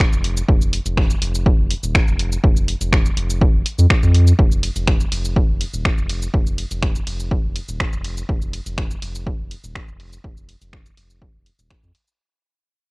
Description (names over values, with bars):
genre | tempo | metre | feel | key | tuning
minimal techno | 123 BPM | 4/4 | straight | unclear | A4 = 440 Hz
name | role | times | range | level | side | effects
round analog bass | bass | 0.0-11.9 s | Eb1 to F2 | -20 LUFS | equal | tube saturation, sidechain pumping
electronic kick drum | drums | 0.0-11.8 s | none | -17 LUFS | equal | cassette tape
punchy analog drum machine | drums | 0.0-12.2 s | cabasa, finger snaps, hi-hat, ride cymbal | -25 LUFS | equal | cassette tape
room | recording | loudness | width
little or no reverb | home recording on cassette | -16 LUFS | side -31 dB against mid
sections
0.0-12.2 A section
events
drop 0.0-12.2; fade-out 4.4-12.2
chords
none